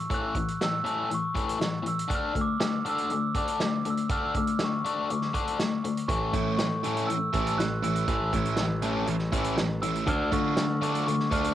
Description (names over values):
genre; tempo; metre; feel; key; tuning
indie rock; 120 BPM; 4/4; straight; A major; A4 = 441 Hz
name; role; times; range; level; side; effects
glockenspiel with rubber mallets; melody; 0.0-11.5 s; C#6 to F#6; -31 LUFS; right 1 dB; cassette tape, plate reverb
biting overdriven guitar; riff; 0.0-11.5 s; A2 to D4; -30 LUFS; left 6 dB; cassette tape
loose indie drum kit; drums; 0.1-11.5 s; hi-hat, kick drum, snare drum; -32 LUFS; right 1 dB; cassette tape
modern bright picked electric bass; bass; 6.1-11.5 s; A1 to D3; -31 LUFS; right 1 dB; none
sludgy distorted guitar; riff; 6.3-11.5 s; D3 to F4; -32 LUFS; right 9 dB; overdrive, analog chorus, cassette tape
room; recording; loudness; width
moderate booth ambience, RT60 0.2 s; home recording on cassette; -25 LUFS; side -12 dB against mid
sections
0.0-11.5 A section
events
none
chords
0.0 A; 2.1 D5; 6.1 A; 10.1 Dm